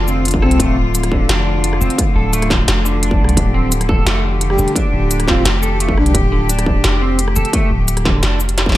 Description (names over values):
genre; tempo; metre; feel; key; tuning
half-time drum and bass; 173 BPM; 4/4; half-time; D minor; A4 = 439 Hz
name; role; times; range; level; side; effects
warm studio cello section; sustained chords; 0.0-8.8 s; D3 to G4; -22 LUFS; left 3 dB; sidechain pumping
electric guitar at the edge of break-up; arpeggios; 0.0-8.8 s; D3 to A4; -23 LUFS; right 2 dB; analog chorus, tape echo
long sustained 808-style bass; bass; 0.0-8.8 s; D1 to C2; -17 LUFS; equal; none
industrial drum kit; drums; 0.1-8.8 s; hi-hat, rim click, shaker, snare drum; -19 LUFS; equal; none
electronic kick drum; drums; 0.3-8.8 s; none; -17 LUFS; equal; distortion
breathy flute-like synth lead; melody; 0.4-0.8, 4.5-6.1 s; C4 to G4; -21 LUFS; left 1 dB; chorus, cassette tape, digital delay
room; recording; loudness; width
digital ambience; none; -12 LUFS; side -15 dB against mid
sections
0.0-8.8 A section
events
drum fill 8.6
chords
0.0 Dm